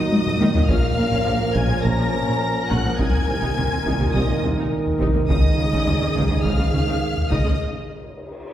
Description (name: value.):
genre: cinematic, epic orchestral film score.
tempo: 104 BPM.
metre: 4/4.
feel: straight.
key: unclear.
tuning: A4 = 440 Hz.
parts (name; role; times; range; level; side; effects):
warm symphonic violin section; melody; 0.0-7.6 s; Eb6 to Bb6; -30 LUFS; left 2 dB; none.
dark symphonic violin section; second line; 0.0-7.6 s; Eb5 to Bb5; -29 LUFS; left 2 dB; none.
warm symphonic viola section; accompaniment; 0.0-7.6 s; F3 to Bb4; -29 LUFS; right 1 dB; none.
mellow French horn section; sustained chords; 0.0-7.6 s; Ab3 to Eb4; -29 LUFS; equal; none.
warm trombone section; sustained chords; 0.0-7.6 s; Ab2 to Gb3; -27 LUFS; right 3 dB; none.
warm symphonic cello section; bass; 0.0-7.5 s; Bb2 to Eb3; -28 LUFS; equal; none.
taiko ensemble; drums; 0.1-7.6 s; none; -23 LUFS; left 1 dB; none.
mellow tuba; bass; 0.4-7.4 s; Bb1 to Eb2; -28 LUFS; right 1 dB; none.
warm studio double bass section; bass; 0.4-7.4 s; Bb1 to Eb2; -27 LUFS; equal; none.
cymbal swell; percussion; 7.6-8.5 s; none; -46 LUFS; left 1 dB; none.
cymbal swell; sound effects; 7.8-8.5 s; none; -38 LUFS; left 2 dB; none.
room: wet scoring stage reverb, RT60 2.0 s.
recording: heard from further back in the room.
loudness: -18 LUFS.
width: side -11 dB against mid.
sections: 0.0-8.5 A section.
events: drum fill 0.1-0.7; break 7.6-8.5; cymbal swell 7.8-8.5.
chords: 0.0 Ebm; 0.7 Bbm; 3.0 Abadd9/C; 5.3 Dbsus2; 7.6 N.C..